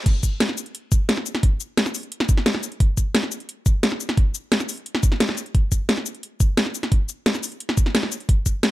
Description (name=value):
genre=drum and bass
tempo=175 BPM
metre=4/4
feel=straight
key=none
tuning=none
part: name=drum and bass drum kit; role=drums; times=0.1-8.7 s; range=crash cymbal, hi-hat, shaker, snare drum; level=-22 LUFS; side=equal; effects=none
part: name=electronic kick drum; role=drums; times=0.1-8.5 s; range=none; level=-18 LUFS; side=equal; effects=high-pass filter on kick, high-pass filter on room
room=little or no reverb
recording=high-pass filter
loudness=-20 LUFS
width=side -16 dB against mid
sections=0.1-8.7 A section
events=drop 0.1-8.7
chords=none